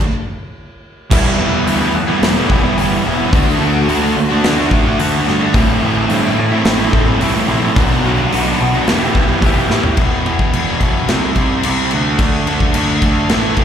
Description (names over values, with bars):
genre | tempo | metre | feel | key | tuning
quiet-loud alternative rock | 108 BPM | 4/4 | straight | E minor | A4 = 440 Hz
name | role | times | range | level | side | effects
big rock drum kit | drums | 0.0-13.6 s | crash cymbal, hi-hat, kick drum, snare drum, toms | -17 LUFS | equal | none
biting overdriven guitar | riff | 1.1-10.0 s | A2 to G4 | -20 LUFS | left 1 dB | phaser, slapback echo
distorted electric guitar | riff | 1.1-13.6 s | E2 to G4 | -19 LUFS | left 10 dB | overdrive, slapback echo
thick fuzz guitar | riff | 1.1-13.6 s | E2 to G4 | -17 LUFS | right 7 dB | distortion, slapback echo
growling picked electric bass | bass | 1.1-13.6 s | E1 to A2 | -20 LUFS | left 1 dB | overdrive
room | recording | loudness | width
light reverb | live gig heard through the venue's PA, recital hall reverb | -12 LUFS | side -8 dB against mid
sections
0.0-1.1 A section; 1.1-10.0 B section; 10.0-13.6 C section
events
stop 0.0-1.1; drum fill 9.7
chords
0.0 N.C.; 1.1 Em; 3.3 D; 5.6 Am; 7.8 Bm; 8.9 Em; 10.0 E5; 11.1 C5; 11.9 D5